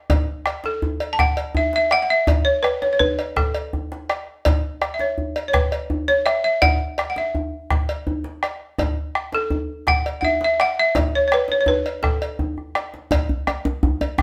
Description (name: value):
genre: west african traditional, West African drum ensemble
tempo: 111 BPM (dotted quarters)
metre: 12/8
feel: straight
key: A major pentatonic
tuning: A4 = 440 Hz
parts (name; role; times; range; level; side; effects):
- bombo; percussion; 0.1-14.2 s; none; -25 LUFS; equal; none
- cowbell; percussion; 0.1-14.2 s; none; -29 LUFS; equal; none
- djembe; percussion; 0.1-14.2 s; none; -28 LUFS; equal; none
- balafon; melody; 0.7-12.9 s; A4 to A5; -22 LUFS; equal; none
- djembe; percussion; 13.1-14.2 s; none; -24 LUFS; equal; none
room: wet studio reverb, RT60 0.7 s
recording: band playing live in one room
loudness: -21 LUFS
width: mono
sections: 0.0-13.1 A section; 13.1-14.2 B section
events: drum fill 12.6-13.1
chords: none